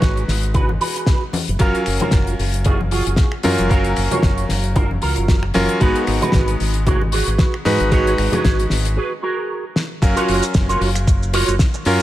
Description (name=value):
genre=nu-disco, nu disco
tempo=114 BPM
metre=4/4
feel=swing 55% on 16ths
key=F# major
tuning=A4 = 440 Hz
part: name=bright electric grand piano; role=accompaniment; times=0.0-12.0 s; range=F#3 to E#5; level=-22 LUFS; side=equal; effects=dub echo
part: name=electric guitar with an envelope filter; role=riff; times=0.0-11.9 s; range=E#4 to C#5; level=-23 LUFS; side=right 3 dB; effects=ensemble chorus, low-pass filter, dub echo
part: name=fingered electric bass with an envelope filter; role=bass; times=0.0-12.0 s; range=F#1 to G#2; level=-20 LUFS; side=equal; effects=none
part: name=damped 70s drum kit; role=drums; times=0.0-12.0 s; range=crash cymbal, finger snaps, hi-hat, shaker, snare drum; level=-24 LUFS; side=left 2 dB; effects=studio reverb
part: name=electronic kick drum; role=drums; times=0.0-11.7 s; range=none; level=-17 LUFS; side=equal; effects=studio reverb
part: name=congas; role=percussion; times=0.5-8.4 s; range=none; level=-27 LUFS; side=left 2 dB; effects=none
room=little or no reverb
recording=none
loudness=-15 LUFS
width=side -14 dB against mid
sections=0.0-10.0 A section; 10.0-12.0 B section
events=break 9.0-10.0; drum fill 9.8; drop 10.0-12.0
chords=0.0 G#m7; 1.6 F#maj7; 5.8 G#m7; 10.0 F#maj7